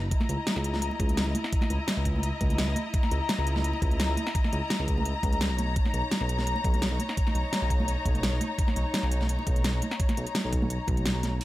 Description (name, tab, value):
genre	liquid drum and bass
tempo	170 BPM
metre	4/4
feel	straight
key	unclear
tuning	A4 = 441 Hz
part	warm studio string section	sustained chords	0.0-11.4 s	A#3 to A#5	-33 LUFS	left 2 dB	none
part	smooth synth bass	bass	0.0-11.4 s	F#1 to C#2	-28 LUFS	equal	none
part	electronic kick drum	drums	0.1-11.0 s	none	-27 LUFS	equal	none
part	pop drum kit	drums	0.1-11.4 s	crash cymbal, hi-hat, snare drum	-32 LUFS	equal	none
part	congas	percussion	0.2-11.3 s	none	-36 LUFS	right 2 dB	none
room	light reverb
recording	none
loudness	-25 LUFS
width	side -16 dB against mid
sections	0.0-11.4 A section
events	none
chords	0.1 C#m69; 5.6 Bmaj9